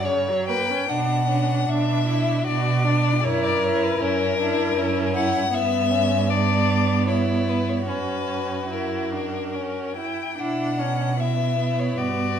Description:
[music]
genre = classical, slow romantic movement for string quartet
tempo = 70-80 BPM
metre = 3/4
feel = rubato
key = B minor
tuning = A4 = 445 Hz
[part]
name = rich violin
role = melody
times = 0.0-12.4 s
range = A#4 to G5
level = -25 LUFS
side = left 8 dB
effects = none
[part]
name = rich violin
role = second line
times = 0.0-12.4 s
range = B3 to C#5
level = -28 LUFS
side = left 1 dB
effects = none
[part]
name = warm viola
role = accompaniment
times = 0.0-12.4 s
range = C#3 to E4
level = -27 LUFS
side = right 3 dB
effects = none
[part]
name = rich cello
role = bass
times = 0.0-12.4 s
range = F#2 to B2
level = -25 LUFS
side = right 4 dB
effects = none
[sound]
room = wet recital hall reverb, RT60 1.6 s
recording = minimal, uncompressed stereo recording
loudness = -20 LUFS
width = side -8 dB against mid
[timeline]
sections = 0.9-12.4 A section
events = none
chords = 0.1 F#; 0.9 Bm; 3.2 F#7; 5.5 G; 7.9 F#; 10.4 Bm

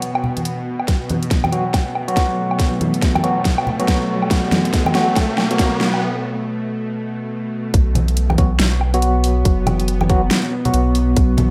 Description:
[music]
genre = deep dubstep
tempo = 140 BPM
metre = 4/4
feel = swing 60% on 16ths, half-time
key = unclear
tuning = A4 = 440 Hz
[part]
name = bowed-like drone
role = sustained chords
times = 0.0-11.5 s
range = B2 to B3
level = -27 LUFS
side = equal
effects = built-in reverb
[part]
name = soft dub sub bass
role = bass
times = 0.0-11.5 s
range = F#1 to D2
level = -21 LUFS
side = equal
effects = high-pass filter
[part]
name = dubstep drum kit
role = drums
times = 0.0-11.5 s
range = hi-hat, snare drum, woodblock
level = -24 LUFS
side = equal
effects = overdrive, studio reverb
[part]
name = congas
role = percussion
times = 0.2-4.9, 8.0-11.5 s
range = none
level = -25 LUFS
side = equal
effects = none
[part]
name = electronic kick drum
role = drums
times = 0.9-11.3 s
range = none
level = -19 LUFS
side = equal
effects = studio reverb
[part]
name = riser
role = sound effects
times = 3.1-6.0 s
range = none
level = -30 LUFS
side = equal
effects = none
[part]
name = overdriven tine electric piano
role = stabs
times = 1.5-11.5 s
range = F#3 to F#4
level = -24 LUFS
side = equal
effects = fast tremolo, dub echo
[sound]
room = wet plate reverb, RT60 1.2 s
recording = dreamy mix soaked in reverb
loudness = -18 LUFS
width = mono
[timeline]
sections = 0.0-7.7 A section; 7.7-11.5 B section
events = build-up 0.0-7.7; drum fill 0.9-6.0; riser 3.1-6.0; break 6.0-7.7; drop 7.7-11.5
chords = 0.0 B5

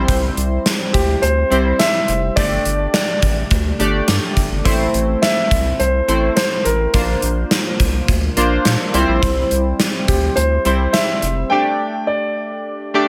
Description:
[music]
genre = 1980s-style pop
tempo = 105 BPM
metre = 4/4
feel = straight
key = unclear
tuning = A4 = 442 Hz
[part]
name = chorused retro synth keys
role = accompaniment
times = 0.0-13.1 s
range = G3 to C6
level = -22 LUFS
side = equal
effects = none
[part]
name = round analog bass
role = bass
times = 0.0-11.4 s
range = F1 to Bb2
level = -22 LUFS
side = equal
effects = none
[part]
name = gated 80s drum kit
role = drums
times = 0.1-11.4 s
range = hi-hat, kick drum, snare drum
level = -20 LUFS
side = equal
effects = gated reverb
[part]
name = warm concert grand piano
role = melody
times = 0.9-13.1 s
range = G4 to G5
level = -22 LUFS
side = equal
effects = delay
[sound]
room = light reverb, small room ambience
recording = none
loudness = -17 LUFS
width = mono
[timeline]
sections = 0.0-13.1 A section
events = break 11.5-13.1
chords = 0.0 C; 2.4 Gsus2; 4.7 Am; 6.9 Bbadd9; 8.9 C; 11.5 Gsus2

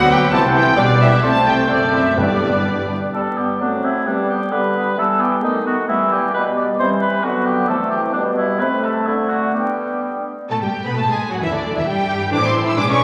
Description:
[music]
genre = quick classical-period movement for symphony orchestra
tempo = 132 BPM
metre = 2/4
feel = rubato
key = G major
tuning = A4 = 441 Hz
[part]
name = rich studio violin section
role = melody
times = 0.0-2.9, 10.5-13.0 s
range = D5 to E6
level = -22 LUFS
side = equal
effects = none
[part]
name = mellow clarinet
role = second line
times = 0.0-10.3 s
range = G3 to C5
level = -27 LUFS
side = equal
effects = none
[part]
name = mellow hollow silver concert flute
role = second line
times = 0.0-10.0 s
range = D5 to D6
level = -30 LUFS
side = equal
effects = none
[part]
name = rich studio violin section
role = second line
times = 0.0-2.9, 10.5-13.0 s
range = D4 to C5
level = -29 LUFS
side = equal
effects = none
[part]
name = warm oboe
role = second line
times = 0.0-10.0 s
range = D4 to D5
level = -25 LUFS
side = equal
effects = none
[part]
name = warm bassoon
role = accompaniment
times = 0.0-10.2 s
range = B2 to A3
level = -26 LUFS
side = equal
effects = none
[part]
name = dark French horn section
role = sustained chords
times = 0.0-10.3 s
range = E3 to D4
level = -25 LUFS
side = equal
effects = none
[part]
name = warm studio cello section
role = bass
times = 0.0-2.9, 10.5-13.0 s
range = D2 to E4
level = -28 LUFS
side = equal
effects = none
[part]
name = warm symphonic double bass section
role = bass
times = 0.0-2.9, 10.5-13.0 s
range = F#1 to B2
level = -25 LUFS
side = equal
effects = none
[part]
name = dark studio viola section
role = accompaniment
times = 0.1-2.9, 10.5-13.0 s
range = D3 to E4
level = -27 LUFS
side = equal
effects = none
[part]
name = timpani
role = percussion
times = 2.2-2.9 s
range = G2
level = -28 LUFS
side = equal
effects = none
[sound]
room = wet concert hall reverb, RT60 2.2 s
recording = vinyl crackle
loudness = -18 LUFS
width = mono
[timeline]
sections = 0.0-3.2 A section; 3.2-10.5 A section; 10.5-13.0 B section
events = none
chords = 0.3 Am/C; 0.8 G/B; 1.2 Am/C; 1.7 D7/F#; 2.2 G; 3.6 D7/F#; 4.1 G; 5.0 Em; 5.4 B7/D#; 5.9 Em; 6.8 C/E; 7.2 Bm/D; 7.7 Am/C; 8.1 G/B; 8.6 Am/C; 9.1 D; 9.5 G; 10.5 Gadd9; 11.0 F#madd9; 11.4 Em; 12.3 Am

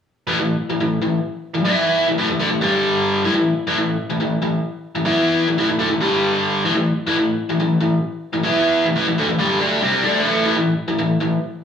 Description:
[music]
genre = rock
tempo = 141 BPM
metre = 4/4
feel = straight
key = unclear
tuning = A4 = 441 Hz
[part]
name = biting overdriven guitar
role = solo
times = 0.3-11.4 s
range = G2 to E4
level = -16 LUFS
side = equal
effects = spring reverb
[sound]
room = wet small room reverb, RT60 0.6 s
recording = band playing live in one room, small room reverb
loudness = -16 LUFS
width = side -8 dB against mid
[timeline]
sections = 0.3-11.6 A section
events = none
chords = 0.3 A5; 1.7 E5; 2.1 A5; 2.6 G5; 3.2 A5; 5.1 E5; 5.5 A5; 6.0 G5; 6.6 A5; 8.4 E5; 8.9 Am

